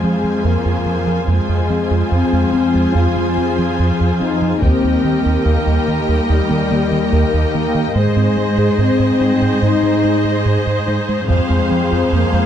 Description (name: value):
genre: cinematic, hybrid orchestral and electronic film score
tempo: 72 BPM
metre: 4/4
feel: straight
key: F minor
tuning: A4 = 439 Hz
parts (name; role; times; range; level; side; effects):
- clear symphonic violin section; second line; 0.0-12.5 s; C5 to Ab5; -25 LUFS; left 2 dB; none
- rich symphonic viola section; accompaniment; 0.0-12.5 s; F4 to C5; -22 LUFS; equal; none
- dark French horn section; sustained chords; 0.0-12.5 s; G3 to F4; -19 LUFS; left 4 dB; none
- harp-like synth pluck; arpeggios; 0.0-12.4 s; Eb3 to Ab4; -24 LUFS; left 4 dB; chorus, tape echo
- round analog bass; riff; 0.0-12.5 s; Eb2 to Ab3; -18 LUFS; right 2 dB; none
- warm symphonic cello section; bass; 0.0-12.5 s; Eb2 to Ab2; -21 LUFS; right 3 dB; none
- taiko ensemble; drums; 4.6-6.2, 11.3-12.5 s; none; -23 LUFS; equal; none
room: moderate concert hall reverb, RT60 2.2 s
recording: dark, warm production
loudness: -13 LUFS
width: side -9 dB against mid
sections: 0.0-12.5 A section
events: none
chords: 0.0 Fm; 4.6 Eb; 8.0 Ab; 11.3 Fm